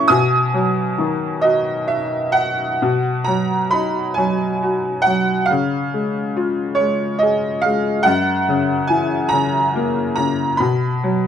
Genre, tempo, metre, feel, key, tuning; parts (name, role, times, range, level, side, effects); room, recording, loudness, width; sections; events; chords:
classical, lyrical solo piano; 43-48 BPM (dotted quarters); 6/8; rubato; B major; A4 = 445 Hz
bright upright piano; solo; 0.0-11.3 s; F#2 to D#6; -16 LUFS; equal
light reverb; dark, warm production; -16 LUFS; side -9 dB against mid
0.0-2.8 A section; 2.8-11.3 B section
0.1 B6; 2.8 B; 5.5 C#; 8.1 F#7; 10.6 B5